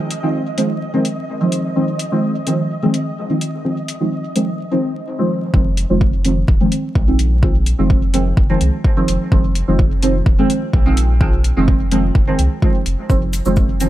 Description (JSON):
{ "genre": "dub techno", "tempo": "127 BPM", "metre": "4/4", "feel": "straight", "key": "F minor", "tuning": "A4 = 445 Hz", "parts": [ { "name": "flickering grainy texture", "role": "texture", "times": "0.0-4.6 s", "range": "Eb5", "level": "-30 LUFS", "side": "right 2 dB", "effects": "built-in reverb, sidechain pumping" }, { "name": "electronic hi-hat", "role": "drums", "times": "0.1-13.9 s", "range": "none", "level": "-26 LUFS", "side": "left 2 dB", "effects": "overdrive" }, { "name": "deep mellow chord stab", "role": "stabs", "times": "0.2-13.9 s", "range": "Eb3 to C4", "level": "-18 LUFS", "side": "right 1 dB", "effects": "chorus, phaser, sidechain pumping, dub echo" }, { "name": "soft dub sub bass", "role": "bass", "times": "5.5-13.9 s", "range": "Eb1 to C2", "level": "-18 LUFS", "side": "equal", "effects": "sidechain pumping" }, { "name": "electronic kick drum", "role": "drums", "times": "5.5-13.7 s", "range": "none", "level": "-15 LUFS", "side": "equal", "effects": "overdrive" }, { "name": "cabasa", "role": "percussion", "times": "13.1-13.9 s", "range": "none", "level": "-32 LUFS", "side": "left 3 dB", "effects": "none" } ], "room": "light reverb", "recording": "vinyl crackle", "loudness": "-14 LUFS", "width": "side -14 dB against mid", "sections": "0.0-5.5 A section; 5.5-13.9 B section", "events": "none", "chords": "0.0 Fm7" }